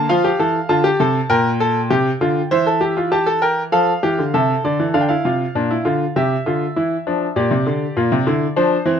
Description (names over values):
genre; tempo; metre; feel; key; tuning
classical, baroque-style 3-part fugue for grand piano; 99 BPM; 4/4; straight; Bb major; A4 = 440 Hz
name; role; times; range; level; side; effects
bright baby grand piano; solo; 0.0-9.0 s; Bb2 to A5; -15 LUFS; equal; none
room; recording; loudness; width
light reverb; close, detailed microphones; -15 LUFS; side -8 dB against mid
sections
0.0-4.9 A section; 4.9-9.0 B section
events
none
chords
0.1 F; 1.3 Gm7/Bb; 2.5 C/E (rootless); 3.7 F; 4.9 Bb; 6.2 Cadd9; 7.4 Gm/Bb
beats
| 0.10 0.70 1.31 1.91 | 2.52 3.12 3.73 4.33 | 4.94 5.55 6.15 6.76 | 7.36 7.97 8.56